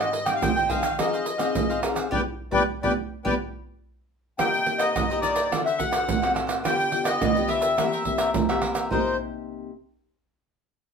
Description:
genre	samba and choro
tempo	106 BPM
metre	4/4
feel	straight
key	unclear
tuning	A4 = 439 Hz
part	accordion	melody	0.0-9.2 s	B4 to G5	-25 LUFS	left 2 dB	light tremolo tuning
part	cavaquinho	accompaniment	0.0-9.1 s	D4 to G5	-31 LUFS	right 2 dB	none
part	nylon-string guitar	accompaniment	0.0-9.7 s	G2 to A4	-30 LUFS	left 6 dB	none
part	egg shaker, pandeiro, tamborim and surdo	percussion	0.0-9.0 s	none	-26 LUFS	right 5 dB	none
room	moderate studio reverb, RT60 0.8 s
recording	minimal, uncompressed stereo recording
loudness	-22 LUFS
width	side -6 dB against mid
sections	0.0-4.4 A section; 4.4-8.9 B section; 8.9-10.9 C section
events	band accent 2.1-4.4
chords	0.0 Abmaj7; 1.0 Fm7; 2.1 G; 4.4 Cm7; 5.5 D7; 6.7 G7/D; 7.8 C7/E; 8.9 Cm7

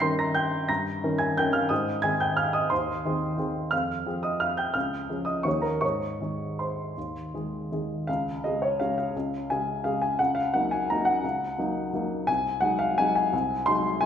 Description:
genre	classical, piano waltz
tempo	156-188 BPM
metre	3/4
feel	rubato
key	Ab major, Db major from 8.1 s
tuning	A4 = 440 Hz
part	warm baby grand piano	solo	0.0-14.1 s	C2 to C7	-24 LUFS	equal	none
room	wet recital hall reverb, RT60 1.7 s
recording	recorded in a church or concert hall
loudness	-24 LUFS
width	side -8 dB against mid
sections	0.0-8.1 A section; 8.1-14.1 B section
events	none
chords	0.0 Eb7/G; 1.7 Ab; 3.7 Fm; 4.8 Db; 5.5 Eb7; 5.8 Ab; 8.1 Db; 10.2 Ebm7/Db; 12.3 Ab7/C

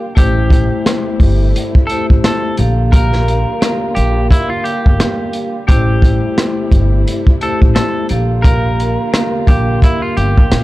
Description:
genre	hip hop, boom-bap hip-hop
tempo	87 BPM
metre	4/4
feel	swing 57% on 16ths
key	G dorian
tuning	A4 = 440 Hz
part	clean electric guitar	melody	0.0-10.6 s	E4 to Bb4	-22 LUFS	equal	high-pass filter, low-pass filter, ping-pong delay, plate reverb
part	vibraphone with hard mallets	accompaniment	0.0-10.6 s	A3 to F5	-19 LUFS	left 1 dB	cassette tape, high-pass filter, low-pass filter, plate reverb
part	dark studio string section	sustained chords	0.0-10.6 s	C3 to F4	-27 LUFS	equal	high-pass filter, low-pass filter, plate reverb
part	upright bass	bass	0.2-10.6 s	G1 to Bb2	-15 LUFS	equal	none
part	crunchy breakbeat drum kit	drums	0.2-10.6 s	hi-hat, kick drum, rim click, snare drum	-12 LUFS	equal	none
room	little or no reverb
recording	dark, warm production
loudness	-11 LUFS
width	side -17 dB against mid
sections	0.0-10.6 A section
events	none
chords	0.2 Am7; 2.6 Gm7/Bb; 5.7 Am7; 8.1 Gm7/Bb

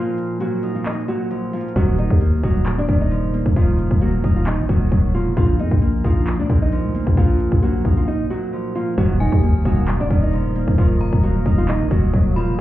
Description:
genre	hip hop, trap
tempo	133 BPM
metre	4/4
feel	half-time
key	Eb harmonic minor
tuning	A4 = 438 Hz
part	nylon-string guitar	melody	0.0-12.5 s	F3 to Eb5	-24 LUFS	right 2 dB	low-pass filter, digital delay
part	Celtic harp	accompaniment	0.0-12.6 s	Bb2 to Eb4	-24 LUFS	left 2 dB	low-pass filter
part	trap drum kit	drums	0.2-12.5 s	handclaps, hi-hat, kick drum	-18 LUFS	equal	none
part	growling 808-style bass	bass	1.8-12.6 s	Eb1 to F2	-20 LUFS	equal	none
part	glassy FM pad	sustained chords	9.4-12.6 s	Bb4 to Eb6	-35 LUFS	left 3 dB	ensemble chorus, built-in reverb
part	impact	sound effects	9.0-10.8 s	none	-26 LUFS	equal	none
part	metallic FM bell	second line	9.2-12.6 s	Ab5 to Cb6	-34 LUFS	left 2 dB	chorus, digital delay
room	little or no reverb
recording	heard muffled through a wall, club reverb, EQ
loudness	-16 LUFS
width	side -14 dB against mid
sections	0.0-9.0 A section; 9.0-12.6 B section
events	break 0.0-1.8, 8.1-9.0; impact 9.0-10.8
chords	0.0 Bbsus4; 1.8 Ebmadd9; 5.4 Bbsus4; 9.0 Ebmadd9

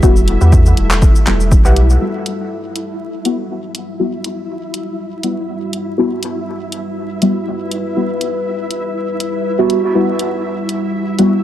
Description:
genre	dub techno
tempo	121 BPM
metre	4/4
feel	swing 54% on 16ths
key	E minor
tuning	A4 = 440 Hz
part	deep dark ambient pad	sustained chords	0.0-11.4 s	G3 to B4	-22 LUFS	left 1 dB	chorus, built-in reverb, sidechain pumping
part	deep mellow chord stab	stabs	0.0-11.3 s	G3 to F#4	-17 LUFS	left 1 dB	chorus, phaser, sidechain pumping, dub echo
part	pure sine sub bass	bass	0.0-2.0 s	E1 to E2	-12 LUFS	equal	sidechain pumping
part	deep house drum kit	drums	0.0-11.3 s	handclaps, hi-hat, shaker	-21 LUFS	equal	none
part	electronic kick drum	drums	0.0-1.6 s	none	-11 LUFS	equal	none
part	flickering grainy texture	texture	0.0-11.4 s	E4	-27 LUFS	equal	built-in reverb, sidechain pumping
part	warbly dusty pluck	riff	0.4-1.7 s	G4 to F#5	-25 LUFS	right 1 dB	chorus, sidechain pumping, dub echo
room	light reverb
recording	echo-heavy mix, vinyl crackle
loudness	-14 LUFS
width	side -12 dB against mid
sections	0.0-2.0 A section; 2.0-11.4 B section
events	filter sweep on synth stab 0.0-2.0, 2.0-11.4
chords	0.0 Emadd9

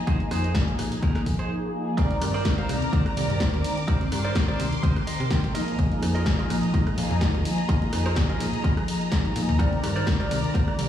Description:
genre	filtered disco house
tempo	126 BPM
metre	4/4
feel	swing 54% on 16ths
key	C minor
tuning	A4 = 441 Hz
part	rich symphonic violin section	sustained chords	0.0-10.9 s	Ab4 to D6	-35 LUFS	left 1 dB	sidechain pumping, low-pass filter
part	mellow synth brass	accompaniment	0.1-10.9 s	Eb3 to D5	-27 LUFS	left 1 dB	chorus, phaser, sidechain pumping, low-pass filter
part	direct-recorded clean electric guitar	riff	0.1-10.8 s	Eb4 to G5	-34 LUFS	right 3 dB	sidechain pumping, low-pass filter
part	slap-like FM bass	bass	0.1-10.9 s	Bb1 to C3	-28 LUFS	equal	sidechain pumping, low-pass filter
part	electronic kick drum	drums	0.1-10.7 s	none	-25 LUFS	equal	none
part	punchy analog drum machine	drums	0.1-10.9 s	hi-hat, ride cymbal, rim click, snare drum	-32 LUFS	left 1 dB	sidechain pumping on hats, sidechain pumping on cymbals
room	light reverb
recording	played on a big sound system in a bare room, large studio reverb, studio reverb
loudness	-22 LUFS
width	side -10 dB against mid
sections	0.0-2.0 A section; 2.0-10.9 B section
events	filter sweep 0.0-2.0; break 1.5-2.0; drop 2.0-10.9; clean electric guitar fill 4.8-5.8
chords	0.0 Bb7sus4; 2.0 Cm9; 5.5 Bb7sus4; 9.6 Cm9

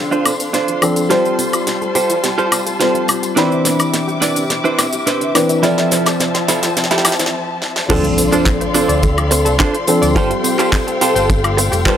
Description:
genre	nu-disco, nu disco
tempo	106 BPM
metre	4/4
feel	straight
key	D dorian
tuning	A4 = 435 Hz
part	dark grand piano	accompaniment	0.0-12.0 s	E3 to B5	-18 LUFS	left 1 dB	sidechain pumping, analog delay
part	dark studio string section	sustained chords	0.0-12.0 s	C3 to D6	-21 LUFS	left 2 dB	sidechain pumping
part	analog pluck	arpeggios	0.0-11.9 s	B3 to D5	-26 LUFS	right 2 dB	chorus, sidechain pumping, analog delay
part	direct-recorded clean electric guitar	riff	0.1-12.0 s	D4 to D5	-20 LUFS	right 4 dB	lush chorus, low-pass filter, analog delay
part	pop drum kit	drums	0.1-12.0 s	crash cymbal, handclaps, hi-hat, shaker, snare drum, woodblock	-18 LUFS	equal	high-pass filter on perc, high-pass filter on snare, high-pass filter on hats, high-pass filter on cymbals
part	tambourine	percussion	0.3-12.0 s	none	-29 LUFS	left 1 dB	none
part	overdriven fingered electric bass	bass	7.9-11.8 s	F1 to D2	-19 LUFS	equal	tube saturation
part	kick drum	drums	7.9-12.0 s	none	-16 LUFS	equal	none
part	impact	sound effects	7.9-10.2 s	none	-25 LUFS	equal	none
room	studio ambience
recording	dry, gritty hardware recording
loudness	-13 LUFS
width	side -9 dB against mid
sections	0.0-7.9 A section; 7.9-12.0 B section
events	build-up 0.0-7.9; drum fill 0.0-7.3, 7.6; filter sweep on synth arpeggio sound 0.0-7.9; break 7.3-7.9; drop 7.9-12.0; impact 7.9-10.2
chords	0.0 Dm7; 1.1 G9sus4; 3.4 Cmaj9; 5.6 Fmaj7; 7.9 Dm7; 10.2 G9sus4

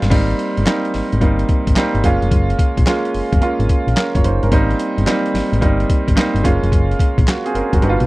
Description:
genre	R&B, new jack swing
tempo	109 BPM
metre	4/4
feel	swing 67% on 16ths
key	unclear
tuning	A4 = 443 Hz
part	clear concert grand piano	accompaniment	0.0-8.1 s	G3 to Db5	-18 LUFS	right 2 dB	none
part	solid FM bass	bass	0.0-8.1 s	F1 to B1	-17 LUFS	equal	none
part	boom bap sampler-style drum kit	drums	0.0-8.1 s	crash cymbal, handclaps, hi-hat, kick drum, snare drum	-17 LUFS	equal	none
room	little or no reverb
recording	dry, close 1970s-style studio recording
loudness	-14 LUFS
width	side -20 dB against mid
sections	0.1-8.1 A section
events	none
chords	0.1 Abmaj7; 2.0 Gbmaj7; 4.5 Abmaj7; 6.4 Gbmaj7

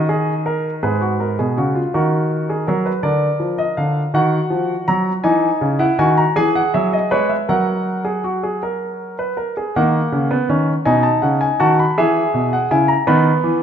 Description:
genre	classical, baroque-style 3-part fugue for grand piano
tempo	54 BPM (dotted quarters)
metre	6/8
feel	straight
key	B major from 5.3 s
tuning	A4 = 442 Hz
part	warm grand piano	solo	0.0-13.6 s	G#2 to B5	-15 LUFS	equal	none
room	wet recital hall reverb, RT60 1.8 s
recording	minimal, uncompressed stereo recording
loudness	-15 LUFS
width	side -8 dB against mid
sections	0.8-9.7 A section; 9.7-13.6 B section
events	none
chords	0.0 D#5; 0.8 G#m; 1.9 D#m; 3.1 A#/D; 4.2 D#m; 5.3 C#m; 7.5 F#; 9.7 B; 10.9 B7; 12.0 E; 13.1 B/D#

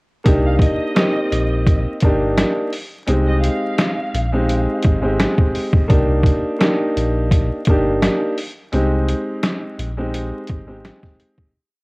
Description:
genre	hip hop, boom-bap hip-hop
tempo	85 BPM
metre	4/4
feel	swing 55% on 16ths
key	C minor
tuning	A4 = 440 Hz
part	bright upright piano	accompaniment	0.2-11.5 s	Ab3 to G4	-20 LUFS	equal	cassette tape, high-pass filter, low-pass filter
part	sub bass with octave	bass	0.3-10.9 s	G1 to C2	-20 LUFS	equal	none
part	trip hop sampler-style drum kit	drums	0.3-11.5 s	hi-hat, kick drum, snare drum	-17 LUFS	equal	none
part	warm studio violin section	melody	0.4-4.6 s	Eb5 to F5	-28 LUFS	equal	high-pass filter, low-pass filter, cassette tape, tape echo
room	small room ambience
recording	home recording on cassette, vinyl crackle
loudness	-15 LUFS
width	side -27 dB against mid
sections	0.3-11.5 verse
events	fade-out 8.7-11.5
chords	0.3 Cm7; 3.1 Fm9; 5.9 Cm7; 8.7 Abmaj9

